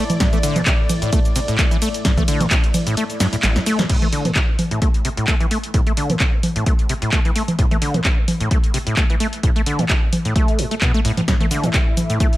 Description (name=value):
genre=acid house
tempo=130 BPM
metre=4/4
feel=swing 54% on 16ths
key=unclear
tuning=A4 = 439 Hz
part: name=lush unison pad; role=sustained chords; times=0.0-3.9, 11.3-12.4 s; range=A2 to E5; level=-28 LUFS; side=left 1 dB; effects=chorus, sidechain pumping
part: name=acid bass, saw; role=riff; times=0.0-12.3 s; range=A1 to A3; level=-22 LUFS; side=equal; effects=overdrive, analog chorus, digital delay
part: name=punchy analog drum machine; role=drums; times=0.1-12.4 s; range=congas, crash cymbal, handclaps, hi-hat, ride cymbal, shaker, snare drum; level=-21 LUFS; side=equal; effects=none
part: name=electronic kick drum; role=drums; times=0.2-12.3 s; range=none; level=-18 LUFS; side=equal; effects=none
room=digital ambience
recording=none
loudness=-16 LUFS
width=side -16 dB against mid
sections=0.0-3.9 A section; 3.9-12.4 B section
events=drop 0.0-3.9; kick drops out 3.0-3.9; drum fill 3.4-3.9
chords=0.0 A5